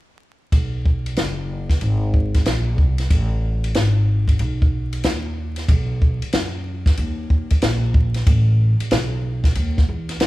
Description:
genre	hip hop, jazz-hop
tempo	93 BPM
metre	4/4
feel	swing 64% on 16ths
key	B mixolydian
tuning	A4 = 440 Hz
part	upright bass	bass	0.5-10.3 s	F#1 to F#2	-20 LUFS	equal	none
part	compact cocktail drum kit	drums	0.5-10.3 s	hi-hat, kick drum, ride cymbal, snare drum	-18 LUFS	equal	none
room	moderate large studio reverb, RT60 1.3 s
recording	band playing live in one room, vinyl crackle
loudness	-17 LUFS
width	side -17 dB against mid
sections	0.5-5.7 A section; 5.7-10.3 B section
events	none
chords	none

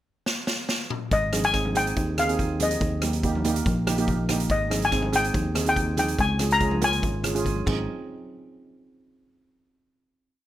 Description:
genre	calypso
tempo	142 BPM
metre	4/4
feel	straight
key	Ab major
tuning	A4 = 440 Hz
part	street-band drum kit	drums	0.3-7.8 s	crash cymbal, hi-hat, kick drum, rim click, snare drum, toms	-28 LUFS	equal	none
part	steel pan	melody	1.1-7.2 s	Eb5 to Bb5	-24 LUFS	left 2 dB	none
part	fingered electric bass	bass	1.1-7.9 s	Ab1 to Eb2	-27 LUFS	equal	none
part	steel pan	accompaniment	1.3-7.9 s	Bb3 to Bb4	-28 LUFS	right 3 dB	none
part	congas	percussion	1.3-7.9 s	none	-34 LUFS	left 2 dB	none
room	moderate small room reverb, RT60 0.5 s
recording	none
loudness	-22 LUFS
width	side -13 dB against mid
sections	0.0-1.1 pickup bar; 1.1-7.9 verse; 7.9-9.6 final hit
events	drum fill 0.3-1.1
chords	0.0 N.C.; 1.1 Abmaj7; 2.8 Eb; 4.5 Abmaj7; 6.2 Db; 7.7 Ab; 7.9 N.C.

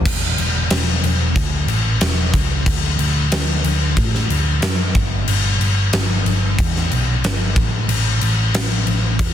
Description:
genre	quiet-loud alternative rock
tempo	92 BPM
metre	4/4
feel	straight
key	unclear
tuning	A4 = 440 Hz
part	hollow-body short-scale picked electric bass	bass	0.0-9.3 s	E1 to A2	-19 LUFS	equal	none
part	huge arena drum kit	drums	0.1-9.3 s	crash cymbal, kick drum, snare drum	-18 LUFS	left 1 dB	none
room	little or no reverb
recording	dense, heavily limited modern master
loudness	-15 LUFS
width	side -10 dB against mid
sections	0.1-9.3 A section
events	none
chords	none

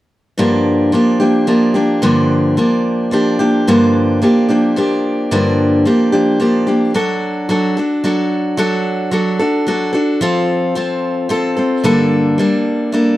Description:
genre	folk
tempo	110 BPM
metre	3/4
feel	straight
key	unclear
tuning	A4 = 441 Hz
part	picked steel-string acoustic guitar	accompaniment	0.4-13.2 s	G2 to A4	-12 LUFS	equal	none
room	light reverb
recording	dark, warm production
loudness	-12 LUFS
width	side -15 dB against mid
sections	0.4-13.2 A section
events	none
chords	0.4 Gm7; 6.9 D/F#; 10.2 F; 11.8 Gmadd9

